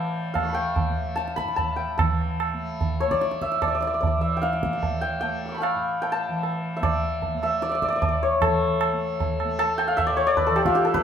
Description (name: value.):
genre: indian classical, Hindustani.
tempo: 150 BPM.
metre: 4/4.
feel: straight.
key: A raga charukeshi.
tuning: A4 = 440 Hz.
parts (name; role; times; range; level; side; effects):
santur; melody; 0.0-11.0 s; F4 to E6; -24 LUFS; left 2 dB; none.
tanpura; drone; 0.0-11.0 s; A2 to A3; -32 LUFS; equal; none.
tabla; percussion; 0.4-11.0 s; none; -27 LUFS; right 3 dB; none.
room: wet large studio reverb, RT60 1.2 s.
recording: band playing live in one room.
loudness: -22 LUFS.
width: side -8 dB against mid.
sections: 0.0-8.4 A section; 8.4-11.0 B section.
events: speeding up 0.0-11.0.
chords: none.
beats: | 0.35 0.76 1.17 1.58 | 1.99 2.40 2.81 3.21 | 3.62 4.02 4.42 4.83 | 5.23 5.63 6.03 6.43 | 6.83 7.22 7.62 8.01 | 8.41 8.80 9.19 9.58 | 9.97 10.36 10.75.